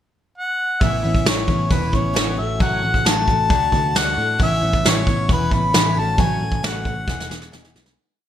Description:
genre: folk rock and heartland rock.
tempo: 134 BPM.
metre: 4/4.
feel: straight.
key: A major.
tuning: A4 = 440 Hz.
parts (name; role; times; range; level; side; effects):
mellow harmonica; melody; 0.4-7.5 s; B4 to B5; -21 LUFS; left 2 dB; none.
picked steel-string acoustic guitar; accompaniment; 0.8-8.0 s; E2 to G#4; -25 LUFS; left 4 dB; analog chorus.
vintage muted picked electric bass; bass; 0.8-8.0 s; E1 to A2; -24 LUFS; right 1 dB; none.
soft brush drum kit; drums; 0.8-8.0 s; hi-hat, kick drum, snare drum; -20 LUFS; right 1 dB; none.
room: light reverb, small room ambience.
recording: bright 1980s-style digital production.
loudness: -16 LUFS.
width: side -10 dB against mid.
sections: 0.0-0.8 pickup bar; 0.8-8.0 verse.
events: fade-out 6.2-8.0; drum fill 7.1-8.0.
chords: 0.0 N.C.; 0.8 Aadd9; 2.4 F#m/A; 3.5 D; 4.4 Aadd9; 6.0 F#m/A; 7.1 E.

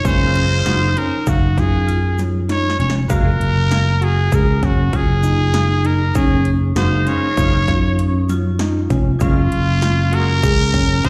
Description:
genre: progressive instrumental, band music in an uneven meter.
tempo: 98 BPM.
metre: 5/4.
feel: straight.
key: Gb lydian.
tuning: A4 = 435 Hz.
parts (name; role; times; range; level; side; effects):
growling trumpet; melody; 0.0-11.1 s; F4 to Db5; -24 LUFS; equal; slapback echo.
vibraphone with medium hard mallets; second line; 0.0-11.1 s; Db4 to Gb4; -28 LUFS; equal; slapback echo, tape echo.
bright tonewheel organ; accompaniment; 0.0-10.3 s; Ab3 to Gb4; -30 LUFS; equal; overdrive, chorus vibrato, slow rotary speaker, slapback echo.
big-room dance drum kit; drums; 0.0-11.1 s; hi-hat, kick drum, snare drum; -23 LUFS; equal; none.
tine electric piano; arpeggios; 0.1-11.1 s; Gb3 to F5; -27 LUFS; equal; overdrive, slapback echo.
sustaining fretless electric bass; bass; 0.1-11.1 s; F1 to Gb2; -19 LUFS; equal; none.
egg shaker; percussion; 0.1-10.7 s; none; -42 LUFS; equal; none.
room: light reverb.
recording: live gig heard through the venue's PA, recital hall reverb.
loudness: -16 LUFS.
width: mono.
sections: 0.0-11.1 A section.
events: drum fill 2.5-3.1.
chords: 0.0 Gbmaj9.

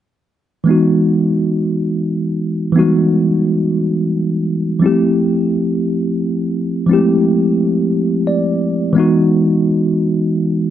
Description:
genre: R&B.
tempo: 58 BPM (dotted quarters).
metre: 6/8.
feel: straight.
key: unclear.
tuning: A4 = 439 Hz.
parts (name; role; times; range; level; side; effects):
mellow tine electric piano; solo; 0.6-10.7 s; E3 to D5; -13 LUFS; equal; medium stereo tremolo.
room: light reverb.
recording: dark, warm production, nothing above 10.9 kHz.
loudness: -13 LUFS.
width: side -11 dB against mid.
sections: 0.7-8.9 A section; 8.9-10.7 B section.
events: tine electric piano fill 7.9-8.9.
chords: 0.7 Emaj9; 4.8 Fmaj9; 8.9 Emaj9.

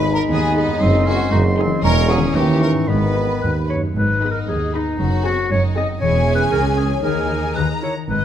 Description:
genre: cinematic, playful, whimsical film cue.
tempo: 116 BPM.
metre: 2/4.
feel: straight.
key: G# minor.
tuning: A4 = 438 Hz.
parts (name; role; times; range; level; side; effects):
warm studio violin section; melody; 0.0-7.9 s; G#5 to C#6; -28 LUFS; left 3 dB; none.
clear oboe; second line; 0.0-3.7 s; B5 to C#6; -28 LUFS; right 1 dB; none.
mellow large flute ensemble; second line; 0.0-3.7 s; D#5 to B5; -29 LUFS; equal; none.
rich studio violin section; second line; 0.0-8.2 s; C#4 to D#5; -26 LUFS; equal; none.
dark studio viola section; accompaniment; 0.0-7.9 s; B#3 to B4; -27 LUFS; right 3 dB; none.
warm bassoon; accompaniment; 0.0-3.7 s; D#3 to G#3; -25 LUFS; right 2 dB; none.
mellow French horn section; sustained chords; 0.0-3.7 s; D#3 to D#4; -24 LUFS; left 3 dB; none.
concert harp; arpeggios; 0.0-8.2 s; F#2 to C#5; -25 LUFS; left 9 dB; none.
rich studio cello section; bass; 0.0-8.2 s; C#2 to G#2; -24 LUFS; right 2 dB; none.
warm studio double bass section; bass; 0.0-8.2 s; E1 to D#2; -23 LUFS; right 2 dB; none.
warm tuba; bass; 0.0-3.9 s; E1 to D#2; -23 LUFS; right 3 dB; none.
clear clarinet; second line; 0.3-8.2 s; B3 to D#5; -24 LUFS; left 1 dB; none.
room: moderate scoring stage reverb, RT60 1.6 s.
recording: none.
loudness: -15 LUFS.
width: side -10 dB against mid.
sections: 0.0-4.0 A section; 4.0-8.2 B section.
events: none.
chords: 0.0 G#m; 0.8 G#7/F#; 1.8 C#m/E; 2.4 D#7b9; 2.9 G#m; 5.0 G#7/F#; 6.0 C#m/E; 7.0 D#sus4; 7.6 D#5.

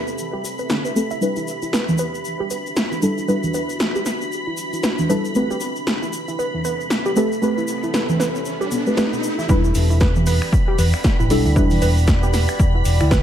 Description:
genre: deep house.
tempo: 116 BPM.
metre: 4/4.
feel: swing 59% on 16ths.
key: E minor.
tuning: A4 = 440 Hz.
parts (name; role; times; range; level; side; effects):
deep dark ambient pad; sustained chords; 0.0-13.2 s; C4 to G5; -29 LUFS; equal; chorus, built-in reverb, vintage 12-bit sampler grit, sidechain pumping.
deep mellow chord stab; stabs; 0.0-13.2 s; G3 to B4; -21 LUFS; equal; chorus, sidechain pumping, dub echo.
soft string machine; texture; 0.0-13.2 s; B5; -31 LUFS; equal; ensemble chorus.
tube shaker; percussion; 0.1-13.2 s; none; -35 LUFS; left 5 dB; none.
warbly dusty pluck; arpeggios; 0.3-13.2 s; E3 to E5; -25 LUFS; right 2 dB; chorus, sidechain pumping, digital delay.
punchy analog drum machine; drums; 0.7-13.2 s; finger snaps, hi-hat, snare drum; -24 LUFS; equal; overdrive.
riser; sound effects; 7.3-9.5 s; none; -30 LUFS; equal; none.
hollow-body short-scale fingered electric bass; bass; 9.5-13.2 s; E1 to E2; -18 LUFS; equal; sidechain pumping.
electronic kick drum; drums; 9.5-13.2 s; none; -18 LUFS; equal; overdrive.
room: light reverb.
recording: vinyl crackle.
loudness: -17 LUFS.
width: side -10 dB against mid.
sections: 0.0-9.5 A section; 9.5-13.2 B section.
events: filter sweep on synth stab 0.0-9.5; filter sweep on synth pluck 0.0-9.5; riser 7.3-9.5; drop 9.5-13.2.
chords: 0.0 Am9; 1.2 Em7; 5.4 Am9; 9.5 Em7.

